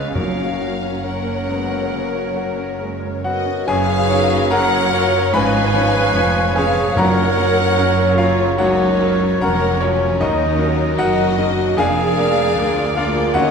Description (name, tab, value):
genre	classical, romantic movement for piano and orchestra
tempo	66-78 BPM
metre	4/4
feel	rubato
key	F# major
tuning	A4 = 440 Hz
part	bright concert grand piano	melody	0.0-13.5 s	C#2 to B5	-20 LUFS	left 2 dB	none
part	rich studio violin section	melody	0.0-13.5 s	C#4 to F#5	-29 LUFS	left 4 dB	none
part	bright oboe	second line	0.0-13.5 s	A#4 to D#5	-28 LUFS	equal	none
part	mellow hollow small flute group	second line	0.0-13.5 s	E#4 to F#5	-26 LUFS	equal	none
part	warm clarinet	second line	0.0-13.5 s	C#4 to B4	-26 LUFS	equal	none
part	warm studio violin section	second line	0.0-13.5 s	A#4 to G#5	-24 LUFS	left 5 dB	none
part	mellow bassoon	accompaniment	0.0-13.5 s	E#3 to A#3	-26 LUFS	right 1 dB	none
part	warm studio viola section	accompaniment	0.0-13.5 s	F#3 to B4	-26 LUFS	right 1 dB	none
part	mellow French horn section	sustained chords	0.0-13.5 s	E#3 to D#4	-28 LUFS	left 3 dB	none
part	clear studio cello section	bass	0.0-13.5 s	D2 to C#3	-25 LUFS	right 4 dB	none
part	warm studio double bass section	bass	0.0-13.5 s	E#1 to D#2	-24 LUFS	right 3 dB	none
part	timpani	percussion	0.2-1.5, 7.0-8.1 s	F#2	-26 LUFS	right 1 dB	none
room	wet scoring stage reverb, RT60 1.7 s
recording	minimal, uncompressed stereo recording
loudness	-15 LUFS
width	side -6 dB against mid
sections	0.0-3.7 A section; 3.7-13.5 B section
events	none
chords	0.1 F#; 5.3 C#7/G#; 7.0 F#; 10.2 D#m; 11.8 A#7/E#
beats	| 0.14 1.05 1.94 2.81 | 3.68 4.51 5.33 6.14 | 6.96 7.77 8.58 9.41 | 10.21 10.98 11.78 12.57 | 13.35